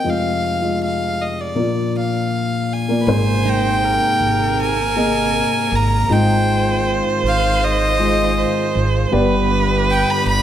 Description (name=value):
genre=acoustic folk-pop ballad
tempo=79 BPM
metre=4/4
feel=straight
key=unclear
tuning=A4 = 439 Hz
part: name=clear violin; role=melody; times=0.0-10.4 s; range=D5 to B5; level=-20 LUFS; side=left 1 dB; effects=slapback echo
part: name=dark grand piano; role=accompaniment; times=0.0-10.4 s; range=F1 to Eb5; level=-20 LUFS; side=left 2 dB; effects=none
part: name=clear viola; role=second line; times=3.0-10.4 s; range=Bb4 to C5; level=-22 LUFS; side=right 4 dB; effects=none
part: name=dark chamber string section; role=sustained chords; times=3.1-10.4 s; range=C3 to Ab4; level=-27 LUFS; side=right 1 dB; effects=none
part: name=upright bass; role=bass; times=3.1-10.4 s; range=G1 to Ab1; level=-21 LUFS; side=right 1 dB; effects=none
part: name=picked steel-string acoustic guitar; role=arpeggios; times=3.5-4.8 s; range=Eb4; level=-27 LUFS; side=right 10 dB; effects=none
room=moderate concert hall reverb, RT60 1.9 s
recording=none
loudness=-15 LUFS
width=side -10 dB against mid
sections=0.0-3.1 A section; 3.1-10.4 B section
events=none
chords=0.0 Fm7; 1.6 Bb; 3.1 Abadd9; 6.1 Fm7/Ab; 9.1 G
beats=| 0.05 0.81 1.56 2.32 | 3.08 3.83 4.59 5.35 | 6.10 6.86 7.62 8.37 | 9.13 9.88